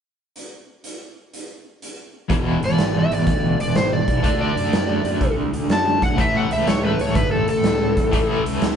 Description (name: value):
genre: blues rock power trio and southern rock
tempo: 123 BPM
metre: 4/4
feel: swing 67% on 8ths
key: A major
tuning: A4 = 440 Hz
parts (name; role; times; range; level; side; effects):
- raw garage drum kit; drums; 0.4-8.8 s; hi-hat, kick drum, snare drum; -23 LUFS; equal; none
- crunchy overdriven guitar; riff; 2.3-8.8 s; E2 to D4; -22 LUFS; equal; tremolo
- fuzz fingered electric bass; bass; 2.3-8.8 s; E1 to F#2; -26 LUFS; equal; overdrive
- overdriven slide guitar; melody; 2.7-8.4 s; A4 to A5; -22 LUFS; left 1 dB; none
room: moderate studio reverb, RT60 0.7 s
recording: band playing live in one room, nothing above 10.8 kHz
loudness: -17 LUFS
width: side -8 dB against mid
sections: 0.4-2.3 A section; 2.3-8.8 B section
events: none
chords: 0.4 N.C.; 2.3 E7; 4.2 D7; 6.2 A7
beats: | 0.35 0.84 1.32 1.81 | 2.29 2.78 3.26 3.75 | 4.23 4.72 5.21 5.69 | 6.18 6.67 7.16 7.64 | 8.13 8.62